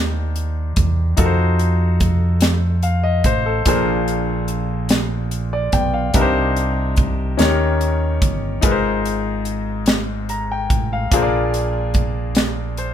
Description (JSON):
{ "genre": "slow gospel", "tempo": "48 BPM (dotted quarters)", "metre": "6/8", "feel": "straight", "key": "unclear", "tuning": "A4 = 440 Hz", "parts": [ { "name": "clear grand piano", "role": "accompaniment", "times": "0.0-12.9 s", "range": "Ab2 to Bb5", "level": "-21 LUFS", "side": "left 3 dB", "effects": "none" }, { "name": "fingered electric bass", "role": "bass", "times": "0.0-12.9 s", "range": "G1 to F2", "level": "-20 LUFS", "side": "right 1 dB", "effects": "none" }, { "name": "crisp fusion drum kit", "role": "drums", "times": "0.4-12.9 s", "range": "hi-hat, kick drum, snare drum", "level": "-19 LUFS", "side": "right 1 dB", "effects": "none" } ], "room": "light reverb", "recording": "band playing live in one room", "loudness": "-16 LUFS", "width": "side -10 dB against mid", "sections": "0.0-12.9 A section", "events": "none", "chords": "0.0 Cm9/Eb; 1.2 F7b9; 3.7 Bb9; 6.1 Cm9; 7.4 Eb7; 8.6 Ab69; 11.1 Bb7" }